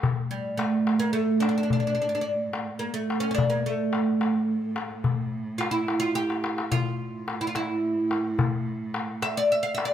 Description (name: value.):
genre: Arabic maqam ensemble.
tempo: 72 BPM (dotted quarters).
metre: 6/8.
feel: straight.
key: A maqam hijaz.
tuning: A4 = 440 Hz.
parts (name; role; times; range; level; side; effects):
rich cello; drone; 0.0-9.9 s; A2; -36 LUFS; right 3 dB; none.
darbuka; percussion; 0.0-9.9 s; none; -29 LUFS; left 4 dB; none.
oud; melody; 0.3-9.9 s; G3 to F5; -25 LUFS; right 1 dB; none.
room: light reverb.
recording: close, detailed microphones.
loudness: -24 LUFS.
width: side -10 dB against mid.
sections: 0.0-9.9 A section.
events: drum fill 6.2-6.7.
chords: none.